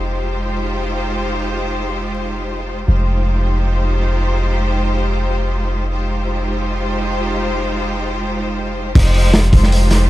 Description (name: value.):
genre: drum and bass, jungle.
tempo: free time.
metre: none.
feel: none.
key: F minor.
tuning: A4 = 440 Hz.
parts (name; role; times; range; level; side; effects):
rich studio string section; sustained chords; 0.0-10.1 s; Ab3 to C5; -20 LUFS; equal; none.
long sustained 808-style bass; bass; 0.0-10.1 s; F1; -18 LUFS; equal; tube saturation.
crunchy breakbeat drum kit; drums; 9.0-10.0 s; crash cymbal, hi-hat, kick drum, snare drum; -14 LUFS; equal; none.
room: little or no reverb.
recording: vinyl crackle.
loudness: -15 LUFS.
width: side -16 dB against mid.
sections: 0.0-9.0 A section; 9.0-10.1 B section.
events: drop 9.0-10.1.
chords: 0.0 Fm9.